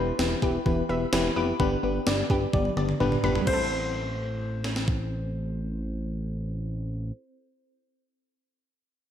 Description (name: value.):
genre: synth-pop.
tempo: 128 BPM.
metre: 4/4.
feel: straight.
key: A minor.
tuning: A4 = 440 Hz.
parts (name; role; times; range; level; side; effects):
FM electric piano with auto-pan; accompaniment; 0.0-7.1 s; B3 to D5; -29 LUFS; left 2 dB; none.
analog pluck; arpeggios; 0.0-7.2 s; D3 to D6; -33 LUFS; right 3 dB; chorus, digital delay.
chorused synth bass; bass; 0.0-7.1 s; E1 to A1; -31 LUFS; equal; none.
gated 80s digital drum machine; drums; 0.2-5.0 s; crash cymbal, kick drum, snare drum, toms; -28 LUFS; equal; gated reverb, gated reverb snare, overdrive.
bright concert grand piano; second line; 3.5-4.8 s; C5; -34 LUFS; left 2 dB; digital delay.
room: wet lush hall reverb, RT60 2.0 s.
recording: bright 1980s-style digital production.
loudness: -25 LUFS.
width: side -10 dB against mid.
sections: 0.0-3.5 A section; 3.5-7.2 B section.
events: drum fill 2.5-3.5.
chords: 0.0 Em7; 1.6 G; 3.5 Am7.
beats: 0.19 0.66 1.13 | 1.60 2.06 2.53 3.00 | 3.47 3.94 4.41 4.88 | 5.35 5.82 6.28 6.75.